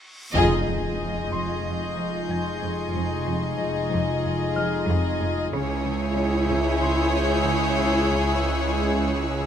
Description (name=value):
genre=cinematic, suspense film score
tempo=92 BPM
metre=4/4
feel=straight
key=unclear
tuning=A4 = 440 Hz
part: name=reverse cymbal and impact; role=sound effects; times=0.1-2.9 s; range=none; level=-33 LUFS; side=equal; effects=none
part: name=warm chamber violin section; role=melody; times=0.3-9.5 s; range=Db5 to Eb5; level=-31 LUFS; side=equal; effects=none
part: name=warm symphonic violin section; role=second line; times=0.3-9.5 s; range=Ab4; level=-29 LUFS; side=left 4 dB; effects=none
part: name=dark symphonic viola section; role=accompaniment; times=0.3-9.5 s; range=Fb4 to F4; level=-29 LUFS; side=right 1 dB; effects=none
part: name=warm French horn section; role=sustained chords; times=0.3-9.5 s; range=Ab3 to Fb4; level=-31 LUFS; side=left 5 dB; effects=none
part: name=rich studio cello section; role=riff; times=0.3-9.3 s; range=F2 to Db4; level=-30 LUFS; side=right 1 dB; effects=none
part: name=rich symphonic cello section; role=bass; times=0.3-9.5 s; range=Db2 to F2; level=-31 LUFS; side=right 3 dB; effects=none
part: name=warm symphonic double bass section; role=bass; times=0.3-9.5 s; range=F1 to Db2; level=-30 LUFS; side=right 3 dB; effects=none
part: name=timpani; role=percussion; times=0.3-1.3 s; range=F2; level=-33 LUFS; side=equal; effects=none
part: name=warm symphonic violin section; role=texture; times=0.3-9.5 s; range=C6 to G6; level=-38 LUFS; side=left 3 dB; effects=none
part: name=bright concert grand piano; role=texture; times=1.3-9.5 s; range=Db5 to F6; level=-37 LUFS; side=left 2 dB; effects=none
room=light reverb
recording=close, detailed microphones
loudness=-22 LUFS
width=side -9 dB against mid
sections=0.3-9.5 A section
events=break 0.0-0.3; reverse cymbal 0.1; band accent 0.3-1.0; impact 0.3-3.0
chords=0.3 Fm7; 5.5 Dbm